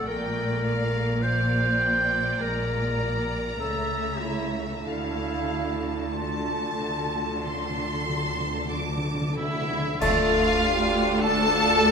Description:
classical, slow romantic movement for symphony orchestra; 46-52 BPM; 4/4; rubato; D minor; A4 = 441 Hz
rich studio violin section; melody; 0.0-11.9 s; E5 to Bb5; -31 LUFS; left 1 dB
mellow clarinet; second line; 0.0-10.5 s; E4 to D5; -29 LUFS; right 1 dB
rich symphonic violin section; second line; 0.0-11.9 s; E4 to D6; -32 LUFS; right 1 dB
rich studio viola section; accompaniment; 0.0-11.9 s; G3 to D4; -33 LUFS; left 1 dB
rich studio cello section; bass; 0.0-11.9 s; D2 to D3; -32 LUFS; right 1 dB
rich symphonic double bass section; bass; 0.0-11.9 s; Bb1 to D2; -32 LUFS; equal
timpani; percussion; 4.9-11.8 s; D3; -34 LUFS; left 1 dB
warm cor anglais; second line; 9.4-11.9 s; E4 to A4; -30 LUFS; equal
mellow flute section; second line; 10.0-10.6 s; A6; -30 LUFS; right 1 dB
warm bassoon; accompaniment; 10.0-10.5 s; A3; -30 LUFS; right 2 dB
mellow French horn section; sustained chords; 10.0-11.9 s; F4 to A4; -27 LUFS; left 3 dB
clash cymbals and concert bass drum; percussion; 10.0-11.9 s; -32 LUFS; equal
wet stone room reverb, RT60 1.3 s; minimal, uncompressed stereo recording; -23 LUFS; side -6 dB against mid
0.0-10.0 A section; 10.0-11.9 B section
timpani fill 4.9-10.0; band accent 10.0-11.2
0.1 Gm/Bb; 2.4 Bb7; 3.6 A/C#; 4.9 Dm
| 0.07 1.22 2.40 3.59 | 4.85 6.15 7.45 8.73 | 10.01 11.22

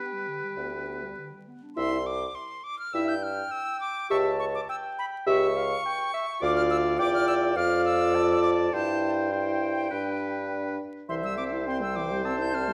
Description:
quick classical-period movement for wind quintet; 103 BPM; 4/4; straight; C major; A4 = 440 Hz
bright silver concert flute; melody; 0.0-12.7 s; G5 to G6; -36 LUFS; equal
clear oboe; second line; 0.0-12.7 s; B4 to E5; -34 LUFS; equal
mellow French horn; accompaniment; 0.0-12.7 s; E3 to G4; -31 LUFS; equal
warm clarinet; accompaniment; 0.0-12.7 s; D3 to A5; -36 LUFS; equal
warm bassoon; bass; 0.6-12.7 s; C2 to G2; -32 LUFS; equal
moderate recital hall reverb, RT60 1.3 s; vinyl crackle; -27 LUFS; mono
0.0-1.8 A section; 1.8-12.7 A section
0.0 G; 1.8 C; 4.1 A7/C#; 6.4 Dm; 7.6 Dm/F; 8.7 C/G; 9.9 G; 11.1 C
0.57 1.17 | 1.77 2.36 2.95 3.53 | 4.11 4.69 5.27 5.85 | 6.42 6.99 7.57 8.15 | 8.73 9.32 9.91 10.50 | 11.09 11.68 12.26

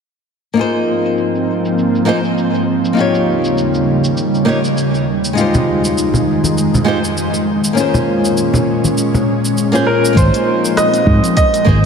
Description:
sunset chillout; 100 BPM; 4/4; swing 56% on 16ths; A4 = 439 Hz
flamenco guitar; accompaniment; 0.5-11.8 s; Ab3 to Db5; -16 LUFS; left 1 dB; auto-pan, tape echo
ethereal airy pad; sustained chords; 0.8-11.9 s; Eb2 to Db4; -16 LUFS; equal; ensemble chorus, built-in reverb
smooth R&B drum kit; drums; 0.6-11.6 s; hi-hat, rim click, shaker; -24 LUFS; right 1 dB; low-pass filter on perc, small room ambience, low-pass filter on hats, low-pass filter on snare
congas; percussion; 5.5-9.2 s; -21 LUFS; equal
clear baby grand piano; melody; 9.9-11.9 s; Bb4 to Eb5; -15 LUFS; right 2 dB; ping-pong delay
fingered electric bass; bass; 10.2-11.9 s; Ab1 to Ab2; -11 LUFS; equal
electronic kick drum; drums; 10.2-11.8 s; -16 LUFS; equal; small room ambience
wet cathedral reverb, RT60 5.1 s; dreamy mix soaked in reverb; -12 LUFS; side -6 dB against mid
0.6-10.2 A section; 10.2-11.9 B section
0.6 Ab69; 3.0 Eb7; 5.1 Fm7; 7.8 Bbm7; 10.2 Ab69
| 0.57 1.17 1.77 2.37 | 2.97 3.57 4.17 4.77 | 5.37 5.97 6.57 7.17 | 7.77 8.37 8.97 9.57 | 10.17 10.77 11.37

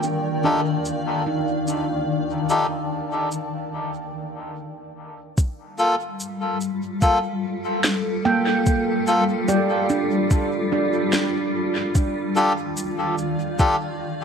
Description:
ambient dub; 73 BPM; 4/4; straight; G minor; A4 = 441 Hz
granular cloud pad; sustained chords; 0.0-14.2 s; Eb3 to A5; -25 LUFS; left 2 dB; built-in reverb
handpan; arpeggios; 0.0-13.6 s; Bb3 to G5; -25 LUFS; right 4 dB; analog delay
electronic shaker and snare drum; drums; 0.0-13.8 s; -28 LUFS; equal; low-pass filter on perc, low-pass filter on snare, low-pass filter on room, dub echo
melodica; stabs; 0.4-13.8 s; Bb3 to A4; -24 LUFS; left 2 dB; dub echo
electronic kick drum; drums; 5.4-13.8 s; -20 LUFS; equal
moderate plate reverb, RT60 2.7 s; echo-heavy mix, lossy compression artefacts; -20 LUFS; side -6 dB against mid
0.0-5.4 A section; 5.4-14.2 B section
filter sweep on handpan 0.0-5.4; break 3.7-5.4
0.0 Ebmaj9#11; 5.4 Gm9; 12.0 Ebmaj9#11
0.44 1.27 | 2.09 2.91 3.73 4.55 | 5.38 6.20 7.02 7.84 | 8.66 9.48 10.31 11.13 | 11.95 12.77 13.60

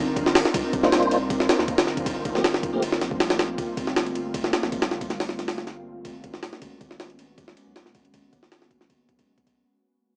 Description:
drum and bass, jungle; 158 BPM; 4/4; straight; A4 = 440 Hz
saturated sub bass; bass; 0.0-9.6 s; D1 to Eb2; -40 LUFS; equal
jungle sampler-style drum kit; drums; 0.2-9.6 s; hi-hat, kick drum, ride cymbal, snare drum; -26 LUFS; equal; studio ambience
mellow tonewheel organ; stabs; 0.8-2.8 s; F3 to C5; -29 LUFS; equal; chorus vibrato, fast rotary speaker, dub echo
light reverb; dry, gritty hardware recording, small speaker sound; -24 LUFS; mono
0.0-9.7 A section
fade-out 0.0-9.7
0.0 Cm11; 2.1 Gm11; 5.9 Abm11
0.16 | 0.54 0.92 1.30 1.68 | 2.06 2.44 2.82 3.20 | 3.58 3.96 4.34 4.72 | 5.10 5.48 5.86 6.24 | 6.62 7.00 7.38 7.76 | 8.14 8.52 8.90 9.28

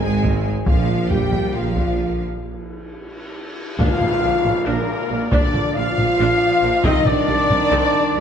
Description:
cinematic, epic orchestral film score; 274 BPM (eighths); 7/8; straight; A4 = 439 Hz
rich symphonic violin section; melody; 0.0-8.2 s; Bb4 to Ab5; -31 LUFS; left 4 dB
warm symphonic violin section; second line; 0.0-8.2 s; Bb4 to Ab5; -28 LUFS; left 4 dB
warm symphonic viola section; accompaniment; 0.0-8.2 s; D3 to D5; -29 LUFS; right 2 dB
mellow trombone section; sustained chords; 0.0-8.2 s; Bb2 to C4; -28 LUFS; right 4 dB
warm French horn section; sustained chords; 0.0-8.2 s; Bb3 to Ab4; -22 LUFS; left 2 dB
rich symphonic cello section; bass; 0.0-8.2 s; Bb2 to Ab3; -28 LUFS; right 3 dB
rich symphonic double bass section; bass; 0.0-8.2 s; Ab1 to C2; -26 LUFS; right 3 dB
warm tuba; bass; 0.0-8.2 s; Ab1 to C2; -29 LUFS; right 3 dB
taiko ensemble; drums; 0.2-7.7 s; -22 LUFS; equal
cymbal swell and tam-tam; percussion; 0.7-5.5 s; -31 LUFS; left 2 dB
mellow silver concert flute; second line; 3.8-8.2 s; Bb4 to F5; -26 LUFS; left 1 dB
mellow trumpet section; stabs; 3.8-8.2 s; Bb4 to F5; -24 LUFS; right 1 dB
timpani; percussion; 6.9-7.5 s; C3; -31 LUFS; equal
wet concert hall reverb, RT60 2.0 s; dark, warm production; -16 LUFS; side -8 dB against mid
0.0-3.8 A section; 3.8-8.2 B section
break 2.2-3.8; band accent 3.8-4.2
0.0 Ab; 0.7 Bb; 6.8 Cm
0.03 0.25 0.46 | 0.68 0.90 1.11 1.33 1.55 1.77 2.00 | 2.22 2.44 2.67 2.89 3.12 3.34 3.56 | 3.78 4.00 4.22 4.44 4.66 4.88 5.10 | 5.32 5.54 5.76 5.97 6.19 6.41 6.63 | 6.85 7.07 7.28 7.50 7.72 7.94 8.16

